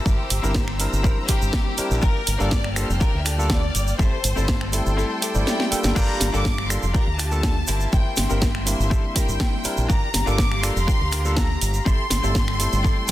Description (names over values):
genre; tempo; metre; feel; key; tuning
nu-disco, nu disco; 122 BPM; 4/4; straight; G dorian; A4 = 440 Hz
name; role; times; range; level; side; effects
warm studio violin section; melody; 0.0-13.1 s; G4 to D6; -29 LUFS; left 1 dB; tape echo
clear symphonic string section; sustained chords; 0.0-13.1 s; Bb3 to F6; -33 LUFS; left 2 dB; sidechain pumping
direct-recorded clean electric guitar; riff; 0.0-13.1 s; C4 to Bb4; -33 LUFS; left 3 dB; wide subtle chorus
fingered electric bass with an envelope filter; bass; 0.1-13.1 s; F1 to D2; -24 LUFS; equal; none
electronic kick drum; drums; 0.1-13.1 s; none; -21 LUFS; equal; none
tube shaker; percussion; 0.1-13.1 s; none; -32 LUFS; right 4 dB; none
house drum kit; drums; 0.3-13.1 s; crash cymbal, finger snaps, hi-hat, snare drum; -26 LUFS; equal; none
barky tine electric piano; accompaniment; 0.4-13.1 s; G3 to G5; -30 LUFS; equal; none
room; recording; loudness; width
light reverb, digital ambience; dense, heavily limited modern master; -19 LUFS; side -14 dB against mid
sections
0.0-6.0 A section; 6.0-13.1 A section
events
drop 0.0-6.0, 6.0-13.1; kick drops out 5.0-6.0; drum fill 5.5-6.0; clean electric guitar fill 12.8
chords
0.0 C7/G; 2.0 Gm7; 4.0 Am7/G; 6.0 Gm7; 7.7 C7/G; 9.9 Gm7; 11.9 Am7/G